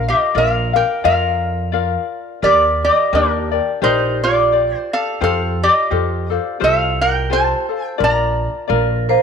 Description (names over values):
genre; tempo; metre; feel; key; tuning
Hawaiian; 86 BPM; 4/4; swing 57% on 8ths; Bb major; A4 = 440 Hz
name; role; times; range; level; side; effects
lap resonator guitar; melody; 0.0-9.2 s; D4 to Bb5; -16 LUFS; right 1 dB; none
ukulele; accompaniment; 0.0-9.2 s; F4 to F5; -20 LUFS; left 11 dB; none
upright bass; bass; 0.0-9.1 s; Bb1 to F2; -22 LUFS; right 2 dB; none
vibraphone with medium hard mallets; second line; 8.7-9.2 s; Bb4 to C5; -17 LUFS; right 13 dB; none
room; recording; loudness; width
moderate echo chamber reverb, RT60 1.5 s; 1960s-style stereo with parts hard left and right; -14 LUFS; side -6 dB against mid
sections
0.0-9.2 A section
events
none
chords
0.0 Bb; 2.4 Ebmaj7; 5.2 Fadd9; 8.0 Bb